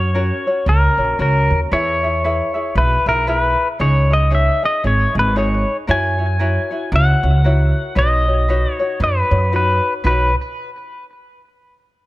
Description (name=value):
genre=Hawaiian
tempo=115 BPM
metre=4/4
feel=swing 60% on 8ths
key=B major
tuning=A4 = 440 Hz
part: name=pedal steel guitar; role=melody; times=0.0-10.3 s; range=A#4 to G#5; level=-18 LUFS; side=left 1 dB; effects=tape echo
part: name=tenor ukulele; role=accompaniment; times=0.0-10.3 s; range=C#4 to E5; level=-23 LUFS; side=left 2 dB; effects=none
part: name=upright bass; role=bass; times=0.0-10.3 s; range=G#1 to F#2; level=-16 LUFS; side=right 1 dB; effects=none
room=light reverb, studio ambience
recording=none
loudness=-14 LUFS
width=side -17 dB against mid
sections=0.0-10.0 A section; 10.0-12.1 B section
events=none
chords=0.0 F#; 1.7 E; 3.8 C#sus2; 5.9 F#7; 8.0 Badd9